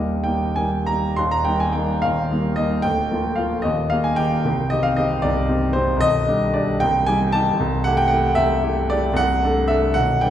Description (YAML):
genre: classical, romantic character piece for solo piano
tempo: 63-78 BPM (dotted quarters)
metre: 6/8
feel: rubato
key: Eb major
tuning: A4 = 439 Hz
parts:
  - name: warm grand piano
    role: solo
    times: 0.0-10.3 s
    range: B0 to C6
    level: -18 LUFS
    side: equal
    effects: none
room: wet recital hall reverb, RT60 1.5 s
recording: recorded in a church or concert hall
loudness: -18 LUFS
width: side -10 dB against mid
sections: 0.0-1.2 A section; 1.2-10.3 B section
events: none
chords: 0.0 Eb; 2.8 Bb/D; 3.6 Eb; 4.5 Cm; 6.0 G/B; 6.8 Cm; 7.6 Am7/C; 9.2 D7/C